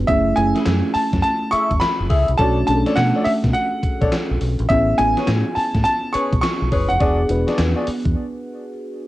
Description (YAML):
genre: R&B, new jack swing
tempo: 104 BPM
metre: 4/4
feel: swing 64% on 16ths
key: F# minor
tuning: A4 = 439 Hz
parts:
  - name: mellow FM electric piano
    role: accompaniment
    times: 0.0-9.1 s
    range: A3 to B4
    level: -23 LUFS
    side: equal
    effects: chorus, phaser, cassette tape
  - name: deep dub fingered electric bass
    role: bass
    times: 0.0-8.1 s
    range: E1 to B2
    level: -21 LUFS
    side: equal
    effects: none
  - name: bright grand piano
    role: melody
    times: 0.1-8.7 s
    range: E5 to C#6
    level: -21 LUFS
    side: equal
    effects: plate reverb
  - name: gated 80s digital drum machine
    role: drums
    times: 0.1-8.2 s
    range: handclaps, hi-hat, kick drum, snare drum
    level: -23 LUFS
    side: equal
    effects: gated reverb, gated reverb snare, cassette tape
  - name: mellow horn section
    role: stabs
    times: 0.6-7.9 s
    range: C#4 to E5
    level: -24 LUFS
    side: left 2 dB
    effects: cassette tape, plate reverb
room: wet booth ambience, RT60 0.2 s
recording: home recording on cassette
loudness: -16 LUFS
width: side -16 dB against mid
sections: 0.1-9.1 A section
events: break 8.2-9.1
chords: 0.1 F#m9; 2.4 Bm9; 4.7 Amaj9; 7.0 E9